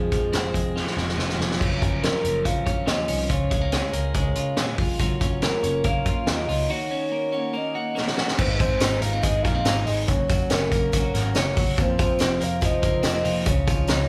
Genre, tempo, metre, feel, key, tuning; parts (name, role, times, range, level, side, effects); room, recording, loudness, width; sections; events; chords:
jangly indie pop; 142 BPM; 4/4; straight; A4 = 439 Hz
soft octave-layered synth lead; melody; 0.0-14.1 s; Ab4 to F5; -30 LUFS; equal; chorus
twelve-string electric guitar; arpeggios; 0.0-14.1 s; F2 to Gb4; -31 LUFS; equal
vintage muted picked electric bass; bass; 0.0-14.1 s; F1 to Db3; -30 LUFS; equal
vintage drum kit; drums; 0.1-14.0 s; crash cymbal, hi-hat, kick drum, snare drum; -27 LUFS; equal
picked twelve-string acoustic guitar; accompaniment; 5.0-14.1 s; F2 to Ab4; -36 LUFS; equal
tambourine; percussion; 8.6-14.0 s; -44 LUFS; equal
moderate large studio reverb, RT60 0.8 s; band playing live in one room; -23 LUFS; mono
0.0-1.6 A section; 1.6-8.4 B section; 8.4-14.1 C section
drum fill 0.8-1.6, 8.0-8.4; break 6.7-8.4
0.0 Fm; 1.6 Gbmaj7; 3.3 Db6; 5.0 Gbmaj7; 6.7 Ebm7; 8.4 Ab; 10.1 Gb; 11.8 Fsus4; 13.5 Dbadd9